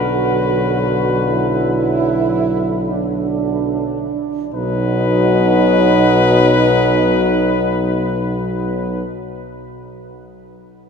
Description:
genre	classical, hymn-like piece for brass band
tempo	free time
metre	none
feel	none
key	B minor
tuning	A4 = 440 Hz
part	warm cornet	melody	0.0-9.0 s	B4	-20 LUFS	left 8 dB	none
part	warm French horn section	second line	0.0-9.0 s	D4 to F#4	-20 LUFS	right 6 dB	none
part	mellow euphonium	accompaniment	0.0-9.0 s	F#3	-22 LUFS	left 2 dB	none
part	warm euphonium	accompaniment	0.0-9.0 s	B2 to D3	-22 LUFS	right 2 dB	none
part	warm tuba	bass	0.0-9.0 s	B1	-21 LUFS	equal	none
room	wet cathedral reverb, RT60 6.7 s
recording	minimal, uncompressed stereo recording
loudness	-14 LUFS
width	side -6 dB against mid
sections	0.0-4.5 A section; 4.5-10.7 B section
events	slowing down 0.0-4.5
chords	0.0 Bm; 4.5 B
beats	free time

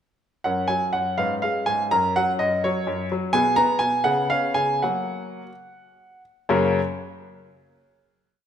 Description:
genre	classical-period piano sonatina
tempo	71-86 BPM (dotted quarters)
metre	6/8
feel	rubato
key	F# major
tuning	A4 = 440 Hz
part	clear grand piano	solo	0.4-6.8 s	F#2 to A#5	-20 LUFS	equal	none
room	wet recital hall reverb, RT60 1.7 s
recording	minimal, uncompressed stereo recording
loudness	-20 LUFS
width	side -8 dB against mid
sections	0.5-6.5 A section; 6.5-8.0 final chord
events	none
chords	0.5 F#; 1.2 C#5/G#; 1.9 F#; 3.3 G#m/B; 4.1 C#5; 4.8 F#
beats	| 0.46 1.19 | 1.92 2.63 | 3.33 4.06 | 4.84 5.66 | 6.49

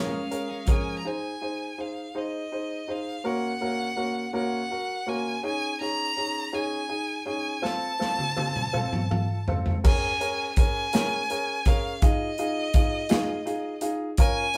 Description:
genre	six-eight pop ballad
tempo	55 BPM (dotted quarters)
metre	6/8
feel	straight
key	Bb minor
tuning	A4 = 440 Hz
part	clear violin	melody	0.0-14.6 s	Eb5 to Bb5	-32 LUFS	equal	slapback echo
part	warm upright piano	accompaniment	0.0-14.6 s	Bb2 to C5	-33 LUFS	equal	none
part	twelve-string electric guitar	arpeggios	0.0-1.1 s	Bb2 to Ab4	-37 LUFS	equal	none
part	modern studio drum kit	drums	0.3-0.8, 7.6-14.6 s	crash cymbal, hi-hat, kick drum, snare drum, toms	-26 LUFS	equal	none
room	moderate studio reverb, RT60 0.6 s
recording	band playing live in one room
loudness	-27 LUFS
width	mono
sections	0.0-1.1 A section; 1.1-9.8 B section; 9.8-14.6 A section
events	drum fill 7.6-9.8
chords	0.0 Bbm7; 1.1 Ab; 3.3 Gb/Bb; 5.4 Dbsus2; 7.6 F; 9.8 Bbm7; 12.0 Fm7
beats	| 1.05 2.15 | 3.25 4.35 | 5.45 6.54 | 7.64 8.74 | 9.85 10.94 | 12.03 13.11 | 14.19

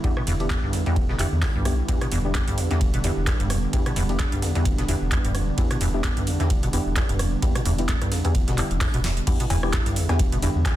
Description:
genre	acid house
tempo	130 BPM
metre	4/4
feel	swing 56% on 16ths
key	E minor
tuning	A4 = 441 Hz
part	warm analog pad	sustained chords	0.0-10.8 s	D3 to E4	-31 LUFS	right 1 dB	chorus, sidechain pumping
part	acid bass, square	riff	0.0-10.7 s	D2 to B2	-26 LUFS	equal	ensemble chorus, ping-pong delay
part	deep mellow chord stab	stabs	0.0-10.5 s	B3 to G4	-32 LUFS	left 3 dB	chorus, ping-pong delay
part	breakbeat sampler-style drum kit	drums	0.0-10.8 s	hi-hat, ride cymbal, snare drum	-38 LUFS	right 2 dB	sidechain pumping on cymbals, high-pass filter on cymbals, high-pass filter on snare, sidechain pumping on hats, high-pass filter on hats, high-pass filter on room
part	electronic kick drum	drums	0.0-10.8 s	none	-25 LUFS	equal	none
part	booming analog drum machine	drums	0.2-10.8 s	cowbell, crash cymbal, handclaps, hi-hat, rim click, snare drum	-30 LUFS	right 1 dB	none
part	round analog bass	bass	0.3-10.7 s	E1 to E2	-27 LUFS	equal	tube saturation, sidechain pumping
room	little or no reverb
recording	dense, heavily limited modern master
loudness	-20 LUFS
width	side -14 dB against mid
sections	0.0-9.3 A section; 9.3-10.8 B section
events	drum fill 9.0; drop 9.3-10.8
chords	0.0 Em7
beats	| 0.04 0.50 0.96 1.43 | 1.89 2.35 2.81 3.27 | 3.73 4.19 4.66 5.12 | 5.58 6.04 6.50 6.96 | 7.42 7.89 8.35 8.81 | 9.27 9.73 10.19 10.65

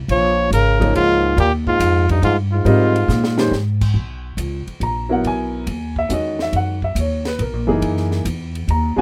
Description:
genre	modal jazz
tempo	140 BPM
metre	3/4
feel	swing 68% on 8ths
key	B major from 4.0 s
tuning	A4 = 441 Hz
part	upright bass	bass	0.0-9.0 s	F#1 to Bb2	-22 LUFS	equal	none
part	warm trumpet	melody	0.1-3.5 s	Eb4 to Db5	-20 LUFS	equal	none
part	clear trombone	second line	0.1-3.5 s	G2 to F3	-25 LUFS	equal	none
part	compact cocktail drum kit	drums	0.1-8.8 s	crash cymbal, hi-hat, kick drum, ride cymbal, snare drum	-33 LUFS	equal	none
part	warm upright piano	accompaniment	0.8-9.0 s	D3 to A#5	-22 LUFS	equal	none
room	light reverb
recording	none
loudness	-18 LUFS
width	mono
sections	0.0-4.0 A section; 4.0-9.0 B section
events	drum fill 3.1-3.5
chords	0.0 Eb9sus4; 4.0 Bmaj9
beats	| 0.09 0.52 0.95 | 1.38 1.81 2.24 | 2.67 3.10 3.52 | 3.95 4.38 4.81 | 5.24 5.67 6.10 | 6.53 6.96 7.39 | 7.82 8.25 8.68

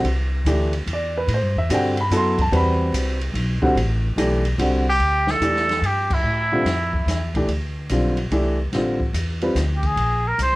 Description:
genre	modal jazz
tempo	145 BPM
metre	3/4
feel	swing 66% on 8ths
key	A dorian, D minor from 5.0 s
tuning	A4 = 440 Hz
part	warm baby grand piano	accompaniment	0.0-9.5 s	D3 to C6	-21 LUFS	equal	none
part	upright bass	bass	0.0-10.6 s	A1 to A2	-22 LUFS	equal	none
part	open jazz drum kit	drums	0.0-10.5 s	crash cymbal, hi-hat, kick drum, ride cymbal, snare drum	-28 LUFS	equal	cassette tape
part	trumpet with straight mute	melody	4.9-7.4, 9.8-10.6 s	E4 to C5	-20 LUFS	equal	cassette tape
room	moderate booth ambience, RT60 0.2 s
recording	home recording on cassette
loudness	-18 LUFS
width	side -20 dB against mid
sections	0.0-5.0 A section; 5.0-10.6 B section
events	band accent 6.0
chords	0.0 Am9; 5.0 D9sus4; 10.0 Bb7sus2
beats	| 0.05 0.46 0.87 | 1.28 1.70 2.11 | 2.52 2.94 3.35 | 3.76 4.17 4.59 | 5.00 5.41 5.83 | 6.24 6.66 7.07 | 7.48 7.90 8.31 | 8.73 9.14 9.55 | 9.97 10.38

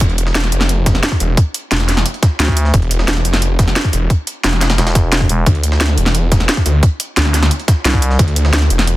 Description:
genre	dark technical drum and bass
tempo	176 BPM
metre	4/4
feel	straight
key	unclear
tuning	A4 = 441 Hz
part	snarling distorted saw bass	bass	0.0-9.0 s	E1 to D2	-14 LUFS	equal	distortion, overdrive
part	drum and bass drum kit	drums	0.0-8.9 s	hi-hat, snare drum	-17 LUFS	equal	overdrive
part	electronic kick drum	drums	0.0-8.3 s	none	-12 LUFS	equal	overdrive
part	jungle sampler-style drum kit	drums	0.0-9.0 s	hi-hat, snare drum	-25 LUFS	right 1 dB	high-pass filter on hats, high-pass filter on snare, high-pass filter on room
part	growling FM bass	bass	2.4-2.7, 4.8-5.5, 7.9-8.2 s	E1 to D2	-14 LUFS	equal	none
room	little or no reverb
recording	dense, heavily limited modern master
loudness	-12 LUFS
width	side -17 dB against mid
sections	0.0-9.0 A section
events	none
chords	0.0 Dmadd9/E (rootless); 5.5 Dsus2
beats	| 0.01 0.35 0.69 1.03 | 1.37 1.72 2.06 2.40 | 2.74 3.08 3.42 3.76 | 4.10 4.44 4.78 5.12 | 5.46 5.81 6.15 6.49 | 6.83 7.17 7.51 7.85 | 8.19 8.53 8.87

